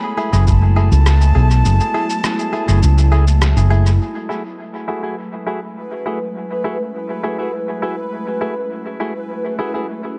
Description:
ambient dub; 102 BPM; 4/4; straight; F# minor; A4 = 440 Hz
concert flute; melody; 0.0-3.4 s; A5 to B5; -28 LUFS; equal; dub echo
warbly tape-like pad; sustained chords; 0.0-10.2 s; F#3 to E4; -29 LUFS; equal; chorus, built-in reverb, phaser
direct-recorded clean electric guitar; stabs; 0.2-9.9 s; A3 to G#4; -27 LUFS; equal; low-pass filter, dub echo
hollow-body short-scale fingered electric bass; bass; 0.3-4.0 s; F#1 to C#2; -13 LUFS; equal
electronic cabasa and rim click; drums; 0.3-4.0 s; -29 LUFS; equal; dub echo
electronic kick drum; drums; 0.5-0.6 s; -18 LUFS; equal
bubbling stepped-filter texture; texture; 5.2-10.2 s; B4; -29 LUFS; equal; chorus, built-in reverb
little or no reverb; echo-heavy mix; -17 LUFS; mono
0.0-4.0 A section; 4.0-10.2 B section
kick drops out 2.8-4.0; filter sweep on ambient pad 4.0-10.2
0.0 F#m9

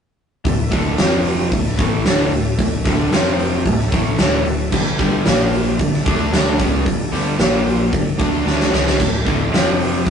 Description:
hard rock; 112 BPM; 4/4; straight; A4 = 440 Hz
tonewheel organ; sustained chords; 0.4-10.1 s; G3 to G5; -31 LUFS; equal
crunchy overdriven guitar; riff; 0.4-10.1 s; D2 to D4; -26 LUFS; right 1 dB
distorted electric guitar; riff; 0.4-10.1 s; D2 to D4; -23 LUFS; right 4 dB; distortion
overdriven semi-hollow guitar; riff; 0.4-10.1 s; D2 to D4; -23 LUFS; left 6 dB
growling picked electric bass; bass; 0.4-10.1 s; D1 to D2; -25 LUFS; equal; overdrive
huge arena drum kit; drums; 0.4-10.1 s; crash cymbal, hi-hat, kick drum, snare drum; -18 LUFS; equal
moderate studio reverb, RT60 0.6 s; rough rehearsal-room recording, tube saturation, nothing above 10.7 kHz; -15 LUFS; side -7 dB against mid
0.4-10.1 A section
drum fill 8.5-9.0
0.4 D5; 1.0 F5; 1.5 D5; 3.1 F5; 3.7 D5; 4.7 G5; 5.3 Bb5; 5.8 G5; 7.4 Bb5; 7.9 G5; 9.0 D5; 9.5 F5

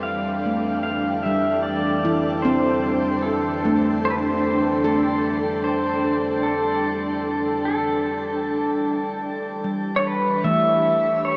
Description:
ambient; 75 BPM; 4/4; straight; A4 = 439 Hz
pedal steel guitar; melody; 0.0-11.4 s; A4 to F5; -23 LUFS; equal
glassy FM pad; sustained chords; 0.0-11.4 s; E3 to G5; -24 LUFS; equal; ensemble chorus, built-in reverb
handpan; arpeggios; 0.0-11.4 s; E3 to A4; -25 LUFS; equal; tape echo
round analog bass; bass; 0.0-11.4 s; E2 to F2; -38 LUFS; equal
bowed-like drone; drone; 0.0-9.7 s; E3 to G3; -32 LUFS; equal; built-in reverb, phaser
wet shimmer reverb, RT60 6.4 s; small speaker sound; -19 LUFS; side -34 dB against mid
0.0-9.6 A section; 9.6-11.4 B section
filter sweep on ambient pad 9.6-11.4
0.0 F6; 9.6 Em

